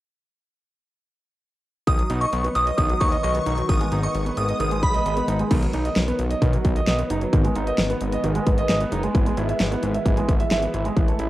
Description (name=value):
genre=synth-pop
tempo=132 BPM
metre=4/4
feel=straight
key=B mixolydian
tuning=A4 = 440 Hz
part: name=shimmering bell with halo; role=second line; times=1.9-4.9 s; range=B5 to D#6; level=-25 LUFS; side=equal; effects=ensemble chorus, phaser, cassette tape, tape echo
part: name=soft string machine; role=sustained chords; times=2.1-11.3 s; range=D#3 to C#4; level=-28 LUFS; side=left 1 dB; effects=ensemble chorus, cassette tape
part: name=felt-muted upright piano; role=arpeggios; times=1.9-11.3 s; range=D#3 to E5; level=-26 LUFS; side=right 3 dB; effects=cassette tape, tape echo
part: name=fat analog bass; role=bass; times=1.9-11.3 s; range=F#1 to D#2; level=-25 LUFS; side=equal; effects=tube saturation
part: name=pop drum kit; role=drums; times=1.9-11.3 s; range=crash cymbal, hi-hat, kick drum, snare drum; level=-22 LUFS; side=equal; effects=cassette tape
room=moderate spring reverb, RT60 2.0 s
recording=home recording on cassette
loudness=-19 LUFS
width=side -16 dB against mid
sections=1.9-5.5 A section; 5.5-11.3 B section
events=none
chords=1.9 B; 3.7 G#m; 5.5 B; 7.3 G#m; 9.1 E/G#